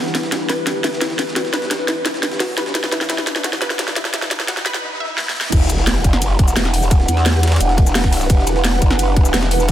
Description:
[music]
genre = dark technical drum and bass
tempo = 173 BPM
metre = 4/4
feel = straight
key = E minor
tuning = A4 = 439 Hz
[part]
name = dark analog pad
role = sustained chords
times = 0.0-9.7 s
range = E4 to F#5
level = -25 LUFS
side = equal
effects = chorus, sidechain pumping
[part]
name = wide unison pluck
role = arpeggios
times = 0.0-5.3 s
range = E4 to E5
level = -27 LUFS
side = left 1 dB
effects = sidechain pumping, dub echo
[part]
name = riser and sub drop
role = sound effects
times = 0.5-6.9 s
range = none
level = -28 LUFS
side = equal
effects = none
[part]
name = ethereal airy pad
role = texture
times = 0.0-9.7 s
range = E3 to B4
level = -27 LUFS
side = right 2 dB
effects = ensemble chorus, built-in reverb, tremolo, sidechain pumping
[part]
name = breakbeat sampler-style drum kit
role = drums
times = 0.1-9.7 s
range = hi-hat, ride cymbal, snare drum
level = -30 LUFS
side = right 1 dB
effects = high-pass filter on cymbals, high-pass filter on snare, high-pass filter on hats
[part]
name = drum and bass drum kit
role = drums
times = 0.1-9.7 s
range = cabasa, crash cymbal, hi-hat, snare drum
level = -20 LUFS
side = equal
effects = overdrive
[part]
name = growl bass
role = bass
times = 5.5-9.7 s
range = E1 to E2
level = -17 LUFS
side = equal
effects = chorus
[part]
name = electronic kick drum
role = drums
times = 5.5-9.7 s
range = none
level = -14 LUFS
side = equal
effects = overdrive
[sound]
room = light reverb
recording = dense, heavily limited modern master, high-pass filter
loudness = -15 LUFS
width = side -12 dB against mid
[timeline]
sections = 0.0-5.5 A section; 5.5-9.7 B section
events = build-up 0.0-5.5; drum fill 0.0-4.8, 5.2-5.5; filter sweep on synth arpeggio sound 0.0-5.5; filter sweep 0.0-5.5; riser 0.5-5.5; drop 5.5-9.7; impact 5.5-6.9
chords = 0.0 Emadd9

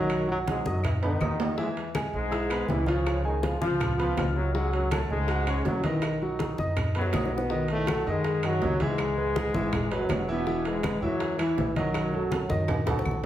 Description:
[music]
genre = latin, salsa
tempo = 162 BPM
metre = 4/4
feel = straight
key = unclear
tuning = A4 = 440 Hz
[part]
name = bright trombone section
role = melody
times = 0.0-12.8 s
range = F#2 to E#4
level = -30 LUFS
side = equal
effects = none
[part]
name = clear concert grand piano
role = accompaniment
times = 0.0-13.3 s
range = D#3 to F#6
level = -30 LUFS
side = equal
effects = none
[part]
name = upright bass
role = bass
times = 0.0-13.3 s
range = E1 to F#2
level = -31 LUFS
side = equal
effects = none
[part]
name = claves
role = percussion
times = 0.1-13.2 s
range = none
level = -43 LUFS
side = left 1 dB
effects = none
[part]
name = congas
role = percussion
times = 0.1-13.2 s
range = none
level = -33 LUFS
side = left 1 dB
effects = none
[part]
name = timbales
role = percussion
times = 0.1-13.3 s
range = none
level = -36 LUFS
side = right 4 dB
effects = none
[part]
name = bongos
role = percussion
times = 1.6-13.3 s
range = none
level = -39 LUFS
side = left 4 dB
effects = none
[sound]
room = wet large studio reverb, RT60 1.1 s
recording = heard from further back in the room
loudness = -25 LUFS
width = side -12 dB against mid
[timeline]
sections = 0.0-7.5 A section; 7.5-13.3 B section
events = drum fill 1.0-1.6, 6.8-7.5, 12.7-13.3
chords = 0.1 B; 1.6 E; 3.1 C#7; 4.5 F#m7/C#; 6.0 B; 7.5 B7; 9.0 C#m7; 10.5 Emaj7; 11.9 B7

